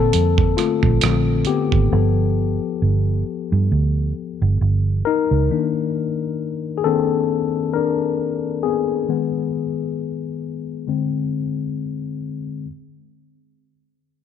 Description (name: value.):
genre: R&B, neo-soul.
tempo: 67 BPM.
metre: 4/4.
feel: swing 57% on 16ths.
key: unclear.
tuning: A4 = 440 Hz.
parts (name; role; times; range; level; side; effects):
tine electric piano; accompaniment; 0.0-12.7 s; D3 to Bb4; -21 LUFS; left 8 dB; auto-pan, low-pass filter.
vintage muted fingered electric bass; bass; 0.0-5.5 s; G1 to Bb2; -17 LUFS; right 2 dB; none.
dusty soul sampler-style drum kit; drums; 0.1-1.9 s; hi-hat, kick drum, rim click; -21 LUFS; right 5 dB; none.
room: light reverb, digital ambience.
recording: 1960s-style stereo.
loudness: -18 LUFS.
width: side -8 dB against mid.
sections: 0.0-12.7 A section.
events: tine electric piano solo 0.0-12.7; filter sweep on tine electric piano 0.0-12.7.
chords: 0.0 Bbmaj7; 1.9 G7; 5.5 Cm7; 9.1 Abm/Eb; 10.9 Ab.